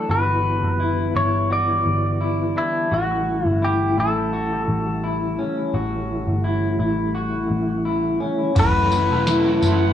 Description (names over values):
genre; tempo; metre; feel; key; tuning
dream pop; 85 BPM; 4/4; straight; unclear; A4 = 441 Hz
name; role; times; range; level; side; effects
clean electric guitar; melody; 0.0-9.9 s; E4 to D5; -22 LUFS; left 1 dB; cassette tape, analog delay, plate reverb
mellow tonewheel organ; sustained chords; 0.0-9.9 s; C#3 to E4; -26 LUFS; right 1 dB; chorus vibrato, fast rotary speaker, cassette tape
electric guitar through a small old amp; arpeggios; 0.0-9.9 s; C#4 to F#4; -25 LUFS; left 2 dB; wide subtle chorus, cassette tape, analog delay, plate reverb
vintage muted picked electric bass; bass; 0.1-9.9 s; E1 to A1; -24 LUFS; equal; none
overdriven semi-hollow guitar; accompaniment; 8.6-9.9 s; F#3 to A4; -26 LUFS; right 3 dB; tremolo, analog chorus, cassette tape, plate reverb
booming analog drum machine; drums; 8.6-9.8 s; crash cymbal, kick drum, snare drum, tambourine, toms; -23 LUFS; right 1 dB; cassette tape
drifting glass-harmonics texture; texture; 9.5-9.9 s; F#5; -32 LUFS; right 7 dB; chorus, built-in reverb, cassette tape, analog delay
room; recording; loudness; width
moderate booth ambience, RT60 0.2 s; home recording on cassette, small room ambience; -18 LUFS; side -10 dB against mid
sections
0.0-8.6 A section; 8.6-9.9 B section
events
none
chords
0.1 G6; 2.9 A7; 8.6 F#m7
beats
| 0.09 0.80 1.50 2.21 | 2.92 3.62 4.33 5.03 | 5.74 6.45 7.15 7.86 | 8.56 9.27